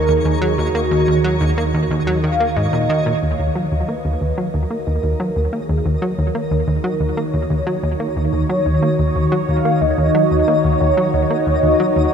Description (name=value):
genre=ambient, sequencer-driven space music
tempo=91 BPM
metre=4/4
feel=straight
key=Eb minor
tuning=A4 = 440 Hz
part: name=mellow horn-like synth lead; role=melody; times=0.0-12.1 s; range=Gb4 to F5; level=-21 LUFS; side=right 1 dB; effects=analog chorus, analog delay
part: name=phased analog pad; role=sustained chords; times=0.0-12.1 s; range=Eb3 to Bb5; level=-20 LUFS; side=equal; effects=phaser, chorus
part: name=analog drone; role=bass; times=0.0-3.2 s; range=Eb2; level=-25 LUFS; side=equal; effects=chorus
part: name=twinkling granular texture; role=texture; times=0.0-12.1 s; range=Eb4 to Eb5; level=-32 LUFS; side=right 1 dB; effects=built-in reverb
part: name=plucky analog bass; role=riff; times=0.1-12.1 s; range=Eb2 to Bb3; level=-19 LUFS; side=equal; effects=analog delay
room=moderate huge ambient reverb, RT60 8.4 s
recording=none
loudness=-15 LUFS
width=side -7 dB against mid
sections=0.0-3.2 A section; 3.2-12.1 B section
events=fade-in on synth texture 3.2-12.1; filter sweep on analog synth bass 3.2-12.1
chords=0.0 Ebm7